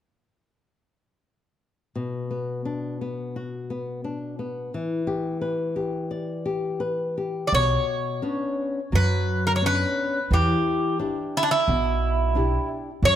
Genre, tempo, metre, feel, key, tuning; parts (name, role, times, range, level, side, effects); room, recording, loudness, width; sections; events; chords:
fado-style ballad; 87 BPM; 4/4; rubato; B minor; A4 = 440 Hz
flamenco guitar; accompaniment; 2.0-13.2 s; B2 to D5; -27 LUFS; left 3 dB
Irish bouzouki; melody; 7.5-13.2 s; D4 to D5; -23 LUFS; right 1 dB; slapback echo
upright bass; bass; 7.5-13.2 s; B1 to F#2; -23 LUFS; right 1 dB
light reverb; close, detailed microphones; -23 LUFS; side -10 dB against mid
2.0-7.5 A section; 7.5-13.2 B section
2.0 Bm; 4.7 Em7; 7.5 Bmadd9; 10.3 Em7